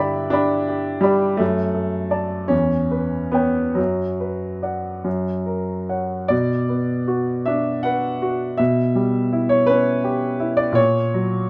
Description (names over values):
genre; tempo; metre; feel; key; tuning
classical, romantic nocturne for solo piano; 45-57 BPM (dotted quarters); 6/8; rubato; B minor; A4 = 439 Hz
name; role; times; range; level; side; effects
clear concert grand piano; solo; 0.0-11.5 s; E2 to B5; -21 LUFS; equal; none
room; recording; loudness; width
light reverb; none; -21 LUFS; mono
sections
0.0-6.3 A section; 6.3-11.5 B section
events
none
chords
0.0 G; 1.4 D/F#; 2.5 C#m7b5/E; 3.8 Bm/F#; 5.1 F#; 6.3 Bm; 8.6 C#m7b5/B; 10.8 F#/A#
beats
0.33 | 1.40 2.52 | 3.77 5.05 | 6.31 7.47 | 8.59 9.68 | 10.77